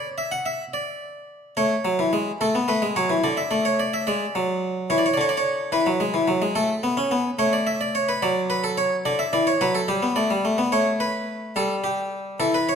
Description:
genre	classical, baroque-style two-part invention for harpsichord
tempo	72 BPM (dotted quarters)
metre	12/8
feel	straight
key	D major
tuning	A4 = 438 Hz
part	harpsichord	solo	0.0-12.8 s	D3 to F#5	-21 LUFS	equal	none
room	wet recital hall reverb, RT60 1.5 s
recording	none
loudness	-20 LUFS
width	side -7 dB against mid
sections	0.0-12.8 A section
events	none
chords	0.0 N.C.; 1.6 A; 3.2 D; 4.9 E7; 6.6 A; 8.2 D/F#; 9.9 G; 11.6 A7(no3)/G

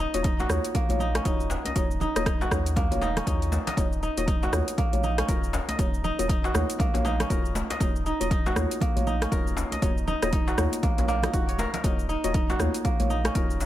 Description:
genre	afro house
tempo	119 BPM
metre	4/4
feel	swing 59% on 16ths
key	Eb minor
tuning	A4 = 441 Hz
part	kora	arpeggios	0.0-13.7 s	Bb3 to Eb5	-30 LUFS	right 2 dB	sidechain pumping, digital delay
part	round analog bass	bass	0.0-13.7 s	Eb1 to Eb2	-30 LUFS	equal	sidechain pumping
part	deep mellow chord stab	stabs	0.1-13.7 s	Bb3 to F5	-33 LUFS	left 2 dB	chorus, sidechain pumping, digital delay
part	deep house drum kit	drums	0.1-13.7 s	cabasa, hi-hat, rim click	-33 LUFS	equal	overdrive
part	electronic kick drum	drums	0.2-13.5 s	none	-27 LUFS	equal	overdrive
part	congas	percussion	0.4-13.3 s	none	-36 LUFS	right 4 dB	none
part	djembe	percussion	0.4-13.7 s	none	-35 LUFS	left 3 dB	none
room	studio ambience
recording	none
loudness	-23 LUFS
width	side -13 dB against mid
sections	0.0-13.7 A section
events	none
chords	0.0 Ebm9

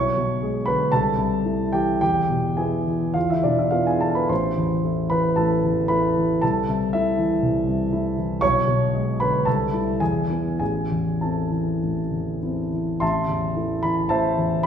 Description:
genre	classical, romantic character piece for solo piano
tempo	95-123 BPM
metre	4/4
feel	rubato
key	A minor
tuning	A4 = 441 Hz
part	dark concert grand piano	solo	0.0-14.7 s	A1 to C#6	-20 LUFS	equal	none
room	wet recital hall reverb, RT60 1.5 s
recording	heard from further back in the room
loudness	-20 LUFS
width	side -8 dB against mid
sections	0.0-13.0 A section; 13.0-14.7 A section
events	none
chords	0.0 G#dim/B; 0.9 Am/C; 2.0 E; 4.3 Am; 6.4 Am/C; 8.4 G#dim/B; 9.5 Am/C; 10.0 E; 10.6 Am

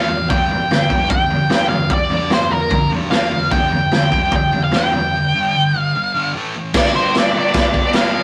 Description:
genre	garage rock duo or trio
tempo	149 BPM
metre	4/4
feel	straight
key	unclear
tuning	A4 = 439 Hz
part	octave-fuzz lead guitar	melody	0.0-8.2 s	Bb4 to G5	-20 LUFS	equal	distortion
part	thick fuzz guitar	riff	0.0-8.2 s	G2 to D4	-24 LUFS	equal	distortion
part	crunchy breakbeat drum kit	drums	0.1-8.0 s	crash cymbal, kick drum, snare drum, toms	-19 LUFS	equal	none
room	light reverb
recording	rough rehearsal-room recording, warm saturation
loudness	-16 LUFS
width	mono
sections	0.0-6.7 A section; 6.7-8.2 B section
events	break 5.1-6.7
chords	0.3 G5; 3.1 D5; 3.5 G5; 6.3 A5; 6.7 G5

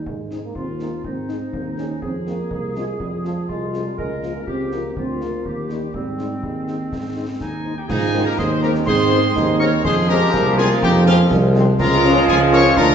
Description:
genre	military-style march for wind band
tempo	123 BPM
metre	2/4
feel	straight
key	Ab major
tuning	A4 = 440 Hz
part	warm euphonium	second line	0.0-12.9 s	F3 to F4	-25 LUFS	right 3 dB	none
part	warm woodwind section	second line	0.0-12.9 s	C4 to Bb4	-25 LUFS	left 1 dB	none
part	mellow tuba	bass	0.1-12.9 s	C2 to Ab2	-20 LUFS	right 2 dB	none
part	concert bass drum, concert snare drum and clash cymbals	drums	0.1-12.9 s	none	-30 LUFS	left 1 dB	none
part	mellow trumpet section	melody	0.3-12.9 s	F4 to Db5	-24 LUFS	left 3 dB	none
part	mellow French horn section	accompaniment	0.3-12.6 s	Eb3 to F4	-27 LUFS	left 4 dB	none
part	bright piccolo	second line	7.4-12.9 s	F5 to Db6	-25 LUFS	left 3 dB	none
part	clear trombone section	sustained chords	7.9-12.9 s	Eb3 to Ab3	-23 LUFS	right 2 dB	none
room	wet recital hall reverb, RT60 1.5 s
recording	recorded in a church or concert hall, nothing above 7.9 kHz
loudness	-16 LUFS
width	side -8 dB against mid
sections	0.0-7.9 A section; 7.9-12.9 A section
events	none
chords	0.1 Ab; 2.0 Fm; 4.0 Bbm/Db; 5.0 Bb7/D; 5.5 Eb; 5.9 Ab; 9.9 Fm; 11.8 Bbm7/Db

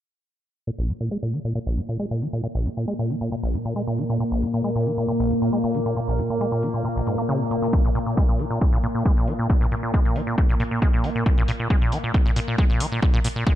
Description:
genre	driving peak-time techno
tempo	136 BPM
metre	4/4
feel	straight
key	unclear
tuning	A4 = 438 Hz
part	acid bass, saw	riff	0.7-13.5 s	Bb1 to Bb3	-25 LUFS	equal	sidechain pumping, dub echo
part	analog drone	drone	1.7-13.6 s	Bb2 to Bb3	-27 LUFS	equal	chorus, sidechain pumping
part	electronic hi-hat	drums	0.9-13.3 s	none	-37 LUFS	left 2 dB	none
part	electronic kick drum	drums	7.7-13.6 s	none	-19 LUFS	equal	none
room	light reverb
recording	low-pass filter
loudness	-20 LUFS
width	side -12 dB against mid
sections	0.7-13.6 A section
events	filter sweep on acid bass 0.7-13.6; filter sweep 0.7-13.6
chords	none

